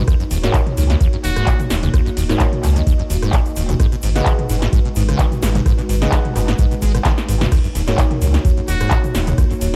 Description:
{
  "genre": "acid house",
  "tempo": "129 BPM",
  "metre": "4/4",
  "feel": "swing 54% on 16ths",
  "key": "Eb minor",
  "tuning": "A4 = 439 Hz",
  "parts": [
    { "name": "dark analog pad", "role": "sustained chords", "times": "0.0-9.8 s", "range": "Ab3 to Eb5", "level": "-29 LUFS", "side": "equal", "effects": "chorus, sidechain pumping" },
    { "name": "liquid acid bass", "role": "riff", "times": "0.0-9.7 s", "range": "Eb2 to Ab3", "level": "-24 LUFS", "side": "equal", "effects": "analog chorus, cassette tape, sidechain pumping, analog delay" },
    { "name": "deep mellow chord stab", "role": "stabs", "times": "0.0-9.7 s", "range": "Eb4 to Gb5", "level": "-29 LUFS", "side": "equal", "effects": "chorus, analog delay" },
    { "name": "warm sub bass", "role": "bass", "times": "0.0-9.8 s", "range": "Eb1 to Db2", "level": "-21 LUFS", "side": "equal", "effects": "sidechain pumping" },
    { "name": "electro analog drum machine", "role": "drums", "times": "0.1-9.7 s", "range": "crash cymbal, handclaps, hi-hat, ride cymbal, rim click, snare drum, toms", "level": "-25 LUFS", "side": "equal", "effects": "analog delay" },
    { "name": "electronic kick drum", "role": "drums", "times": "0.1-9.5 s", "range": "none", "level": "-18 LUFS", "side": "equal", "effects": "none" },
    { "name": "egg shaker", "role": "percussion", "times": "0.1-9.7 s", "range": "none", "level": "-38 LUFS", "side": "equal", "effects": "none" },
    { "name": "trumpet with metal mute", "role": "melody", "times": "1.2-1.6, 8.7-9.0 s", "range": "Gb4", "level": "-30 LUFS", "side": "equal", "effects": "analog delay" }
  ],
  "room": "digital ambience",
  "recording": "echo-heavy mix",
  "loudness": "-17 LUFS",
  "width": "mono",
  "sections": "0.0-9.8 A section",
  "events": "drum fill 7.1-7.5",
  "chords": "0.1 Ebm7; 3.8 Abm7; 7.5 Ebm7",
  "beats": "| 0.08 0.54 1.01 1.47 | 1.94 2.40 2.87 3.33 | 3.80 4.26 4.73 5.19 | 5.66 6.12 6.59 7.05 | 7.52 7.98 8.45 8.91 | 9.38"
}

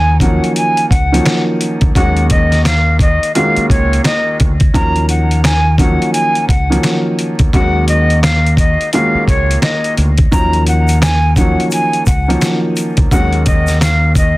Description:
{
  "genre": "hip hop, boom-bap hip-hop",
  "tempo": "86 BPM",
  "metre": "4/4",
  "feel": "swing 61% on 16ths",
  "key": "Eb minor",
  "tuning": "A4 = 437 Hz",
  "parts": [
    { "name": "breathy mellow jazz flute", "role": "melody", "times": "0.0-14.4 s", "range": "Db5 to Bb5", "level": "-17 LUFS", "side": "equal", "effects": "high-pass filter, low-pass filter, digital delay" },
    { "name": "dark upright piano", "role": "accompaniment", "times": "0.0-14.4 s", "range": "Eb2 to Gb4", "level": "-17 LUFS", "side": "right 1 dB", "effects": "high-pass filter, low-pass filter" },
    { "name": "deep dub fingered electric bass", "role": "bass", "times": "0.0-14.3 s", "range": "Db2 to Eb2", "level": "-14 LUFS", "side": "equal", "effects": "none" },
    { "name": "dusty soul sampler-style drum kit", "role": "drums", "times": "0.2-14.4 s", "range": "hi-hat, kick drum, snare drum", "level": "-14 LUFS", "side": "equal", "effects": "none" },
    { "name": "egg shaker", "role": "percussion", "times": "10.3-14.4 s", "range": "none", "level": "-32 LUFS", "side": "left 4 dB", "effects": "none" }
  ],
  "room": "small room ambience",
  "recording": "dense, heavily limited modern master, vinyl crackle",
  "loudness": "-10 LUFS",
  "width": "side -19 dB against mid",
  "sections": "0.0-14.4 A section",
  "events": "none",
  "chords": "0.0 Ebm7; 2.0 Gbmaj7/Eb; 4.7 Ebm7; 7.5 Gbmaj7/Eb; 10.3 Ebm7; 13.1 Gbmaj7/Eb",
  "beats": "0.56 1.26 | 1.96 2.65 3.35 4.05 | 4.75 5.44 6.14 6.84 | 7.54 8.23 8.93 9.63 | 10.33 11.03 11.72 12.42 | 13.12 13.82"
}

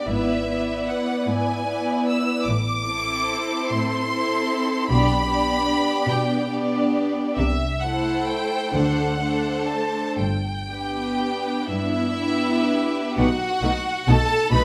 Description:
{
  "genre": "classical, slow romantic movement for string orchestra",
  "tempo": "39-51 BPM (dotted quarters)",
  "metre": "6/8",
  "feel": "rubato",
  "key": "G major",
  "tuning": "A4 = 440 Hz",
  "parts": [
    { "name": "clear studio violin section", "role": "melody", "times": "0.0-14.6 s", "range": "E5 to E6", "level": "-28 LUFS", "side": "equal", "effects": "none" },
    { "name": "clear studio violin section", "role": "second line", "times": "0.0-14.6 s", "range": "E4 to D5", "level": "-29 LUFS", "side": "equal", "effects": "none" },
    { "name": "rich studio viola section", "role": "accompaniment", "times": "0.0-14.6 s", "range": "A3 to E4", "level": "-28 LUFS", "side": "equal", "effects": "none" },
    { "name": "rich studio cello section", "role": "bass", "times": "0.1-14.6 s", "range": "G2 to D3", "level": "-29 LUFS", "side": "equal", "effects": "none" },
    { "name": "rich studio double bass section", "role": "bass", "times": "0.1-14.6 s", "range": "G1 to D2", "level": "-29 LUFS", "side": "equal", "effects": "none" }
  ],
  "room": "moderate recital hall reverb, RT60 1.6 s",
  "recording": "none",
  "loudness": "-23 LUFS",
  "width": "mono",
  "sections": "0.0-13.2 A section; 13.2-14.6 B section",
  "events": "none",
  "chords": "0.1 E7/G#; 2.5 Am; 4.9 G/B; 7.4 Am/C; 8.7 D7; 10.2 G; 13.2 B7",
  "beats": "| 0.09 1.29 | 2.48 3.69 | 4.91 6.10 | 7.39 8.75 | 10.19 11.70 | 13.19 14.53"
}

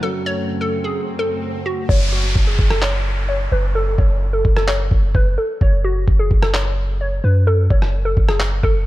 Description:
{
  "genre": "hip hop, trap",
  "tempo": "129 BPM",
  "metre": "4/4",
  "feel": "half-time",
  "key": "F# minor",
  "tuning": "A4 = 445 Hz",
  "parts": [
    { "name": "hollow square pluck", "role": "melody", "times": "0.0-8.9 s", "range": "F#4 to C#5", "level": "-23 LUFS", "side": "left 1 dB", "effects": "chorus, low-pass filter, diffuse ambient delay" },
    { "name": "dark grand piano", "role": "accompaniment", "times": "0.0-1.9 s", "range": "F#3 to F#4", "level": "-27 LUFS", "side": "right 2 dB", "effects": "wide subtle chorus, low-pass filter" },
    { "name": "airy breathy pad", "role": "sustained chords", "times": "0.0-1.9 s", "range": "F#2 to A3", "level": "-29 LUFS", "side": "left 1 dB", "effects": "chorus" },
    { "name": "swell and downlifter", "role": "sound effects", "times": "0.4-5.6 s", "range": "none", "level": "-28 LUFS", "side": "equal", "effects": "none" },
    { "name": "warm 808-style bass", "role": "bass", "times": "1.9-8.9 s", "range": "F#1 to F#2", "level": "-18 LUFS", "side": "equal", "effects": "none" },
    { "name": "lo-fi sampler-style drum kit", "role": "drums", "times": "1.9-8.7 s", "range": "handclaps, kick drum, rim click", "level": "-17 LUFS", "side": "equal", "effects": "none" }
  ],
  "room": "light reverb, digital ambience",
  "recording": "none",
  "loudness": "-15 LUFS",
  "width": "side -16 dB against mid",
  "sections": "0.0-1.9 A section; 1.9-8.9 B section",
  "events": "swell 0.4-1.9; hi-hats muted 1.9-8.9; filter sweep 1.9-8.9",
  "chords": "0.0 F#m; 1.9 F#5",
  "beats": "| 0.03 0.49 0.96 1.43 | 1.89 2.36 2.82 3.29 | 3.75 4.22 4.68 5.15 | 5.61 6.08 6.54 7.01 | 7.47 7.94 8.40"
}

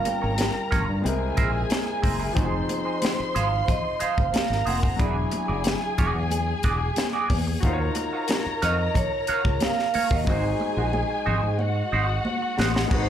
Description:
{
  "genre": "lush 1970s-style soul",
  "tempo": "91 BPM",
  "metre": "4/4",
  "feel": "straight",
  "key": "unclear",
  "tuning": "A4 = 439 Hz",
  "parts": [
    { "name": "vibraphone with medium hard mallets", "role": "melody", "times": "0.0-12.2 s", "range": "Db5 to B5", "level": "-28 LUFS", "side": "right 3 dB", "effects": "slapback echo" },
    { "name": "warm studio string section", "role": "second line", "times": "0.0-13.1 s", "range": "Eb4 to C6", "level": "-30 LUFS", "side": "left 2 dB", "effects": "slapback echo" },
    { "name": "clear grand piano", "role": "accompaniment", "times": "0.0-13.1 s", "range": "F3 to Db5", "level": "-32 LUFS", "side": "left 4 dB", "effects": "slapback echo" },
    { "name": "clean electric guitar", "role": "riff", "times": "0.1-13.1 s", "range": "Eb4 to F5", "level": "-29 LUFS", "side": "right 5 dB", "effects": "wah, slapback echo" },
    { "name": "tight funk drum kit", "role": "drums", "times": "0.1-13.1 s", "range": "crash cymbal, hi-hat, kick drum, snare drum", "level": "-26 LUFS", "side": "equal", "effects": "none" },
    { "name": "congas", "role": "percussion", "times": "0.1-13.1 s", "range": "none", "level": "-34 LUFS", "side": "right 2 dB", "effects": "slapback echo" },
    { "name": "fingered electric bass", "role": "bass", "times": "0.2-13.1 s", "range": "E1 to Ab2", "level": "-26 LUFS", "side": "equal", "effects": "none" }
  ],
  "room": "light reverb",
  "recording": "live gig heard through the venue's PA, club reverb",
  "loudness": "-22 LUFS",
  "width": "side -10 dB against mid",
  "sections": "0.0-12.9 A section",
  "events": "drum fill 10.3-12.9",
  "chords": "0.0 Gm7b5; 1.0 Caug7; 2.4 Fm7; 5.0 E9; 7.6 Ebm9; 10.3 Ab7",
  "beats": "0.39 1.05 1.71 | 2.36 3.02 3.68 4.34 | 5.00 5.66 6.32 6.98 | 7.64 8.29 8.96 9.62 | 10.27 10.93 11.59 12.25 | 12.91"
}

